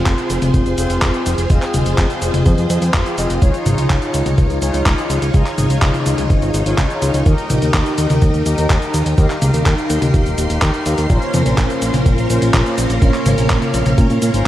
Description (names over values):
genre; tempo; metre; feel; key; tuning
italo disco; 125 BPM; 4/4; straight; F minor; A4 = 435 Hz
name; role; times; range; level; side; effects
string machine, full ensemble; sustained chords; 0.0-14.5 s; Bb3 to C6; -22 LUFS; right 1 dB; ensemble chorus
analog synth brass; stabs; 0.0-14.5 s; C4 to G5; -22 LUFS; left 2 dB; chorus, digital delay
fat analog bass; bass; 0.0-14.4 s; Eb1 to Bb2; -18 LUFS; equal; none
dusty soul sampler-style drum kit; drums; 0.1-14.4 s; cabasa, handclaps, hi-hat, toms; -20 LUFS; left 1 dB; small room ambience, gated reverb
electronic kick drum; drums; 0.1-14.1 s; none; -15 LUFS; equal; small room ambience
room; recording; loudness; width
light reverb, digital ambience; vinyl crackle; -13 LUFS; side -13 dB against mid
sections
0.0-14.5 A section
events
none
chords
0.0 Fm; 3.4 Dbadd9; 7.3 Eb; 11.1 Bbmadd9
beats
0.06 0.54 1.02 | 1.50 1.98 2.46 2.94 | 3.42 3.90 4.38 4.86 | 5.34 5.82 6.30 6.78 | 7.26 7.74 8.22 8.70 | 9.18 9.66 10.14 10.62 | 11.10 11.58 12.06 12.54 | 13.02 13.50 13.98 14.46